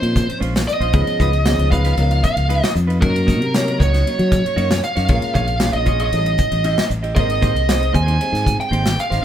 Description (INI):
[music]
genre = electric jazz fusion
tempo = 116 BPM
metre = 4/4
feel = straight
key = unclear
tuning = A4 = 441 Hz
[part]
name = bluesy overdriven lead guitar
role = melody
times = 0.0-9.2 s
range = Bb4 to Ab5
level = -21 LUFS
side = right 2 dB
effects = distortion
[part]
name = dark concert grand piano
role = accompaniment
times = 0.0-9.1 s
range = F3 to Db5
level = -26 LUFS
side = left 2 dB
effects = none
[part]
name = clean electric guitar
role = stabs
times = 0.0-9.2 s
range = Ab3 to D#5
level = -27 LUFS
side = right 3 dB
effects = none
[part]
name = modern bright fingered electric bass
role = bass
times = 0.0-9.2 s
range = Ab1 to Gb3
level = -19 LUFS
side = equal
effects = none
[part]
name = modern studio drum kit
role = drums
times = 0.0-9.2 s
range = hi-hat, kick drum, ride cymbal, snare drum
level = -21 LUFS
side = equal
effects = none
[sound]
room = light reverb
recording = band playing live in one room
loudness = -15 LUFS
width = side -10 dB against mid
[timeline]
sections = 0.0-9.2 A section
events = none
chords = 0.0 Bbm9; 0.9 Db9; 3.0 Gb6; 5.1 Bbm7; 6.1 A7#11; 7.2 Abmaj9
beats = 0.41 | 0.93 1.45 1.97 2.49 | 3.01 3.53 4.05 4.57 | 5.09 5.61 6.13 6.65 | 7.17 7.68 8.20 8.72 | 9.24